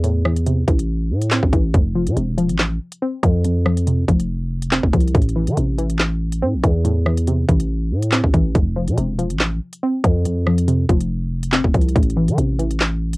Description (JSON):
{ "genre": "hip hop, drill", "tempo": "141 BPM", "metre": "4/4", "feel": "half-time", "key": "A minor", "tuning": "A4 = 440 Hz", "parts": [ { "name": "warbly dusty pluck", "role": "accompaniment", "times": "0.0-13.2 s", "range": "F2 to C4", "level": "-21 LUFS", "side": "equal", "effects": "chorus, low-pass filter" }, { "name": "growling 808-style bass", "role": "bass", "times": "0.0-13.2 s", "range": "E1 to E3", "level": "-19 LUFS", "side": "equal", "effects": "none" }, { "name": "drill drum kit", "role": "drums", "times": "0.0-13.2 s", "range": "handclaps, hi-hat, kick drum, rim click, snare drum", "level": "-18 LUFS", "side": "equal", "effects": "cassette tape" } ], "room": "little or no reverb", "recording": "home recording on cassette", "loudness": "-16 LUFS", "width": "side -22 dB against mid", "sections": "0.0-13.2 A section", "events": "none", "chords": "0.0 Am; 1.7 F5; 5.1 Am; 8.6 F5; 12.0 Am" }